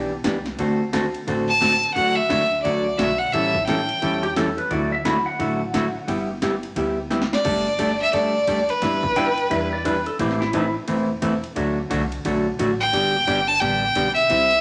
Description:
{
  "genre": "country, western swing",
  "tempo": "175 BPM",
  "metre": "4/4",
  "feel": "swing 62% on 8ths",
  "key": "G major",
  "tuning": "A4 = 440 Hz",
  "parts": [
    { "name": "vintage hollow-body jazz guitar", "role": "accompaniment", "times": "0.0-14.5 s", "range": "C3 to B4", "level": "-25 LUFS", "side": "equal", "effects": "none" },
    { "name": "upright bass", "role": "bass", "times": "0.0-14.6 s", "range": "E1 to E2", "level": "-37 LUFS", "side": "equal", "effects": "none" },
    { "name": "punchy analog drum machine", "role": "drums", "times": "0.2-14.6 s", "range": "crash cymbal, hi-hat, kick drum, ride cymbal, snare drum", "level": "-33 LUFS", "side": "equal", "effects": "overdrive" },
    { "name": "clear fiddle", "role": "melody", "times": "1.5-4.3, 7.3-10.1, 12.8-14.6 s", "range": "B4 to A5", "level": "-22 LUFS", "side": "equal", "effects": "none" },
    { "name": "clean lap steel guitar", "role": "second line", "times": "4.2-6.3, 9.2-10.7 s", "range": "E4 to B5", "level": "-28 LUFS", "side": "equal", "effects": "none" }
  ],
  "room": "wet large studio reverb, RT60 1.3 s",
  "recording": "none",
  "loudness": "-21 LUFS",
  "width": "mono",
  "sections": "0.0-7.5 A section; 7.5-14.6 B section",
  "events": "drum fill 7.1-7.5",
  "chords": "0.0 Em7; 0.6 D7; 2.0 D; 3.3 A7; 4.7 Dadd9; 6.1 G6; 7.5 Gsus2; 8.8 Em7/G; 10.2 Amadd9; 11.6 D; 12.9 G"
}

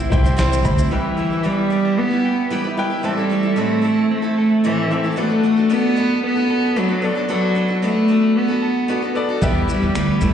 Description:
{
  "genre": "acoustic pop",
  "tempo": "113 BPM",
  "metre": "4/4",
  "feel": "straight",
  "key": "unclear",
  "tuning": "A4 = 440 Hz",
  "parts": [
    { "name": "clear baby grand piano", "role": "accompaniment", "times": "0.0-10.3 s", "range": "B3 to B5", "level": "-28 LUFS", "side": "left 4 dB", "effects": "slapback echo" },
    { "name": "picked steel-string acoustic guitar", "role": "accompaniment", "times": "0.0-10.3 s", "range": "A2 to C5", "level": "-24 LUFS", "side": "equal", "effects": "slapback echo" },
    { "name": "direct-recorded clean electric guitar", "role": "arpeggios", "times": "0.0-10.3 s", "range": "E3 to A4", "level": "-28 LUFS", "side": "right 5 dB", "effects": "slapback echo" },
    { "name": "upright bass", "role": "bass", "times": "0.1-0.9, 9.4-10.3 s", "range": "C2 to E2", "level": "-19 LUFS", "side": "equal", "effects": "none" },
    { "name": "dusty soul sampler-style drum kit", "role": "drums", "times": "0.1-0.9, 9.4-10.3 s", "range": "finger snaps, kick drum, shaker, snare drum", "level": "-22 LUFS", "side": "equal", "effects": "none" },
    { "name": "warm cello", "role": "melody", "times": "0.9-10.3 s", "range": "E3 to B3", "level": "-18 LUFS", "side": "equal", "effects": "slapback echo" }
  ],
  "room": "light reverb, small room reverb",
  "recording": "live gig heard through the venue's PA, recital hall reverb, nothing above 10.3 kHz",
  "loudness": "-16 LUFS",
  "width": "side -9 dB against mid",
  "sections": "0.9-10.3 A section",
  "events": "grand piano fill 0.0-0.9",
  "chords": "0.0 C; 0.9 Em; 3.0 Am; 5.2 Bm7; 9.4 Em"
}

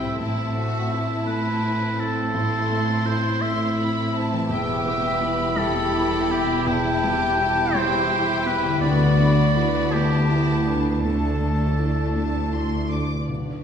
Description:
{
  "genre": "cinematic, emotional film score for orchestra",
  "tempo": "55 BPM (dotted quarters)",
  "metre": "6/8",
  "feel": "rubato",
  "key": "unclear",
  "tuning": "A4 = 441 Hz",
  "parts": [
    { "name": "warm studio violin section", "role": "melody", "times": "0.0-13.6 s", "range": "D5 to D6", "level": "-32 LUFS", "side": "left 2 dB", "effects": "none" },
    { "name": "rich studio violin section", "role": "second line", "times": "0.0-13.6 s", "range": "D4 to G4", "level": "-31 LUFS", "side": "left 2 dB", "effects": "none" },
    { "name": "warm oboe", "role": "second line", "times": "0.0-12.9 s", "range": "G4 to G5", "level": "-26 LUFS", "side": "equal", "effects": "none" },
    { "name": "felt-muted upright piano", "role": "accompaniment", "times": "0.0-13.6 s", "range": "A1 to E4", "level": "-26 LUFS", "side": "equal", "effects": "none" },
    { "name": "warm studio viola section", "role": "accompaniment", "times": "0.0-13.6 s", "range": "A3 to E4", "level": "-31 LUFS", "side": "right 1 dB", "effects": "none" },
    { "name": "concert harp", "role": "arpeggios", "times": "0.0-13.6 s", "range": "A2 to B5", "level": "-29 LUFS", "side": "left 5 dB", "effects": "none" },
    { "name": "clear studio cello section", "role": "bass", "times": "0.0-13.6 s", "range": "D2 to C3", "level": "-30 LUFS", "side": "right 2 dB", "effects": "none" },
    { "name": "warm studio double bass section", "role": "bass", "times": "0.0-13.0 s", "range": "E1 to D2", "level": "-28 LUFS", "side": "right 2 dB", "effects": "none" }
  ],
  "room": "wet recital hall reverb, RT60 1.6 s",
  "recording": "recorded in a church or concert hall",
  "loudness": "-20 LUFS",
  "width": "side -8 dB against mid",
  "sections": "0.0-13.3 A section",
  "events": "none",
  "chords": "0.2 Amadd9; 4.5 Em; 8.8 Dsus2"
}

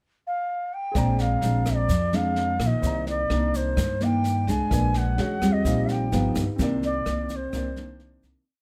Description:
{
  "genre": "bossa nova",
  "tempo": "128 BPM",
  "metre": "4/4",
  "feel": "straight",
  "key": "C minor",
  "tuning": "A4 = 445 Hz",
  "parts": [
    { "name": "bansuri", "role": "melody", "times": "0.3-8.2 s", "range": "C5 to Ab5", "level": "-30 LUFS", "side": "equal", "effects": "plate reverb" },
    { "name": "warm grand piano", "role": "accompaniment", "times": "0.9-8.5 s", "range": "C4 to Bb5", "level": "-36 LUFS", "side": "equal", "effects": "none" },
    { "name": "upright bass", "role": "bass", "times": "0.9-8.3 s", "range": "G1 to G2", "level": "-29 LUFS", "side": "equal", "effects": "none" },
    { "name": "jazz brush drum kit", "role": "drums", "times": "0.9-8.3 s", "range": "kick drum, rim click, snare drum", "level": "-33 LUFS", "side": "equal", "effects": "none" },
    { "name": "nylon-string guitar", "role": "accompaniment", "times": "1.0-8.5 s", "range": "G2 to F#4", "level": "-30 LUFS", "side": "equal", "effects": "none" },
    { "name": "egg shaker", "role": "percussion", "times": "1.0-8.5 s", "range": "none", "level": "-47 LUFS", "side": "equal", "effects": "none" }
  ],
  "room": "light reverb",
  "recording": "none",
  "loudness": "-24 LUFS",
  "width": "mono",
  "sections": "0.0-1.0 pickup bar; 1.0-8.5 A section",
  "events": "fade-out 6.6-8.5",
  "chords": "0.0 N.C.; 1.0 Bb9; 2.8 Cm9; 4.7 Bb7b9; 5.2 E69; 5.7 Eb69/Bb; 6.1 Gaug7; 6.6 Cm9"
}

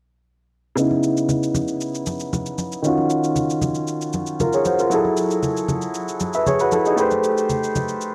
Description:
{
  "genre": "amapiano",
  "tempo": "116 BPM",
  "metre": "4/4",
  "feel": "straight",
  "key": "C# minor",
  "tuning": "A4 = 435 Hz",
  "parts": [
    { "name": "clear concert grand piano", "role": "accompaniment", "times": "0.8-8.1 s", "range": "C#3 to E5", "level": "-22 LUFS", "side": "equal", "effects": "low-pass filter, cassette tape" },
    { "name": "shaker", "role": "drums", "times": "0.8-8.1 s", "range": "none", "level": "-37 LUFS", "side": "equal", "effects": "overdrive" },
    { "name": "congas", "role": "percussion", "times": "0.9-7.9 s", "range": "none", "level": "-30 LUFS", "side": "equal", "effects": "none" }
  ],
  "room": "moderate lush hall reverb, RT60 1.8 s",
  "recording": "home recording on cassette",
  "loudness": "-21 LUFS",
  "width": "mono",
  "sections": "0.8-8.1 A section",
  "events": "filter sweep on grand piano 0.8-8.1",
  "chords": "0.8 C#m9; 2.8 D#m9; 4.9 F#m9; 7.0 Am9"
}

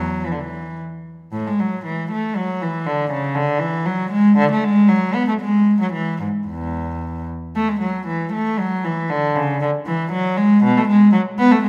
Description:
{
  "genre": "classical, baroque-style suite movement for unaccompanied cello",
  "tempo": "117 BPM",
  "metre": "3/4",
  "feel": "rubato",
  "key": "unclear",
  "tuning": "A4 = 441 Hz",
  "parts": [
    { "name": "rich cello", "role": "solo", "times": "0.0-11.7 s", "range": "E2 to B3", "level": "-19 LUFS", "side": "equal", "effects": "none" }
  ],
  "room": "wet recital hall reverb, RT60 1.8 s",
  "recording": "none",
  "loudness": "-19 LUFS",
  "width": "mono",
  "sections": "0.0-7.5 A section; 7.5-11.7 A section",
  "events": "none",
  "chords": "none"
}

